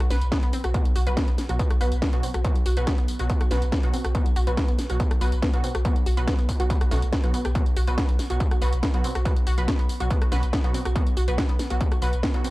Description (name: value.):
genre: driving peak-time techno.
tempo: 141 BPM.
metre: 4/4.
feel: straight.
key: unclear.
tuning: A4 = 439 Hz.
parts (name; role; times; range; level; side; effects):
analog pluck; riff; 0.0-12.5 s; A3 to B4; -31 LUFS; equal; chorus, sidechain pumping, analog delay.
warm sub bass; bass; 0.0-12.4 s; B1; -26 LUFS; equal; overdrive, sidechain pumping, low-pass filter.
techno drum kit; drums; 0.0-12.5 s; hi-hat, rim click, snare drum, tambourine; -31 LUFS; equal; overdrive.
electronic kick drum; drums; 0.3-12.3 s; none; -23 LUFS; equal; distortion, overdrive.
rave stab; stabs; 0.7-12.5 s; B2 to F#4; -33 LUFS; right 2 dB; chorus, built-in reverb, sidechain pumping, analog delay.
room: little or no reverb.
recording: dry, gritty hardware recording.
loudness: -21 LUFS.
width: side -19 dB against mid.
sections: 0.0-12.5 A section.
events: none.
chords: 0.0 B5.